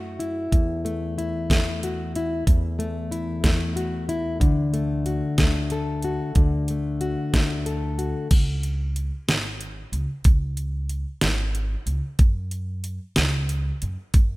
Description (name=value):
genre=indie folk with a building arrangement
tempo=62 BPM (dotted quarters)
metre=6/8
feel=straight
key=unclear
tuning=A4 = 440 Hz
part: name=fingerpicked plugged-in steel-string acoustic guitar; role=accompaniment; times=0.0-8.3 s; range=E2 to A4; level=-25 LUFS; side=left 2 dB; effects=none
part: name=pop drum kit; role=drums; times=0.2-14.3 s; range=crash cymbal, hi-hat, kick drum, snare drum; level=-20 LUFS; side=equal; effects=none
part: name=upright bass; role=bass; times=0.5-14.4 s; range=G#1 to F#2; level=-28 LUFS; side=equal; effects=none
room=light reverb, small room ambience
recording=rough home demo mix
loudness=-22 LUFS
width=side -20 dB against mid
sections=0.0-8.3 A section; 8.3-14.4 B section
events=none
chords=0.0 F#m7; 0.5 Esus4; 4.4 D; 8.3 C#5; 12.2 F#5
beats=| 0.52 1.49 | 2.47 3.44 | 4.41 5.39 | 6.36 7.33 | 8.31 9.28 | 10.26 11.23 | 12.20 13.17 | 14.14